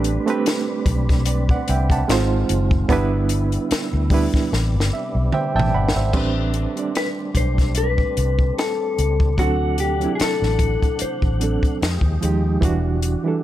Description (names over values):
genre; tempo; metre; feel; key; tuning
R&B, neo-soul; 74 BPM; 4/4; swing 54% on 16ths; A dorian; A4 = 440 Hz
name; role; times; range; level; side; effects
bright reed electric piano; accompaniment; 0.0-13.4 s; E3 to B5; -23 LUFS; right 5 dB; fast tremolo
tonewheel organ; sustained chords; 0.0-13.4 s; C3 to F#5; -31 LUFS; left 1 dB; chorus vibrato, wide subtle chorus
vintage muted fingered electric bass; bass; 0.0-13.1 s; E1 to F2; -21 LUFS; left 1 dB; none
compact cocktail drum kit; drums; 0.0-13.2 s; crash cymbal, hi-hat, kick drum, snare drum, toms; -22 LUFS; left 1 dB; none
mellow electric guitar; melody; 7.0-12.2 s; F#4 to C5; -24 LUFS; left 4 dB; none
room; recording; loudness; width
small room reverb; none; -17 LUFS; side -13 dB against mid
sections
0.0-6.1 A section; 6.1-13.4 B section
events
drum fill 4.5-6.1; reed electric piano fill 4.5-6.1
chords
0.0 Am11; 2.1 G#6; 2.9 G6; 4.5 Am11; 9.4 D7; 11.8 Fm9; 12.6 Em9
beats
0.46 1.27 2.08 | 2.89 3.70 4.51 5.32 | 6.13 6.94 7.75 8.56 | 9.38 10.19 11.00 11.81 | 12.62 13.43